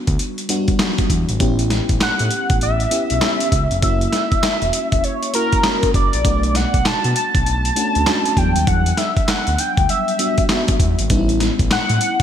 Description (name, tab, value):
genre	R&B, new jack swing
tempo	99 BPM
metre	4/4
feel	swing 62% on 16ths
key	unclear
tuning	A4 = 440 Hz
part	FM electric piano with soft pad layer	accompaniment	0.0-12.2 s	F#3 to G4	-23 LUFS	left 1 dB	chorus
part	smooth gliding synth bass	bass	0.1-12.2 s	E1 to B2	-20 LUFS	equal	none
part	dusty soul sampler-style drum kit	drums	0.1-12.2 s	handclaps, hi-hat, kick drum, snare drum	-19 LUFS	equal	overdrive, gated reverb
part	octave-doubled lead	melody	2.0-12.2 s	A#4 to A5	-20 LUFS	equal	chorus, phaser
room	moderate lush hall reverb, RT60 1.8 s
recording	bright 1980s-style digital production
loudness	-15 LUFS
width	side -9 dB against mid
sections	0.0-12.2 A section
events	none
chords	0.0 Em7; 1.4 A9; 3.8 F#7; 6.2 Bm9; 8.4 Em7; 11.1 A9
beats	0.19 0.80 | 1.40 2.01 2.61 3.22 | 3.83 4.43 5.04 5.64 | 6.25 6.86 7.46 8.07 | 8.67 9.28 9.89 10.49 | 11.10 11.70